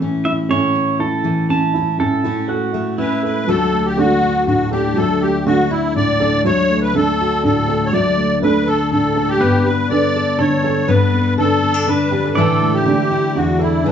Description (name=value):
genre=acoustic folk duo or small band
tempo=122 BPM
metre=3/4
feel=straight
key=D major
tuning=A4 = 438 Hz
part: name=fingerpicked steel-string acoustic guitar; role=accompaniment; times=0.0-13.9 s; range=D2 to A4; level=-19 LUFS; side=left 3 dB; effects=none
part: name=dark upright piano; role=arpeggios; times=0.0-13.9 s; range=E3 to A4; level=-19 LUFS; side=right 2 dB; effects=none
part: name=pedal steel guitar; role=second line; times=0.3-3.4, 9.4-13.9 s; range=E4 to A5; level=-23 LUFS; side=right 4 dB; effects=none
part: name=musette accordion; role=melody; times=3.0-13.9 s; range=D4 to D5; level=-18 LUFS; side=left 1 dB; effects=none
room=wet studio reverb, RT60 0.5 s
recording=heard from further back in the room, nothing above 7.8 kHz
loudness=-14 LUFS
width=side -8 dB against mid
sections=0.0-2.0 A section; 2.0-3.5 B section; 3.5-13.9 C section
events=pedal steel guitar solo 0.0-2.0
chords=0.0 A; 3.5 D; 9.4 Gadd9; 12.4 Asus4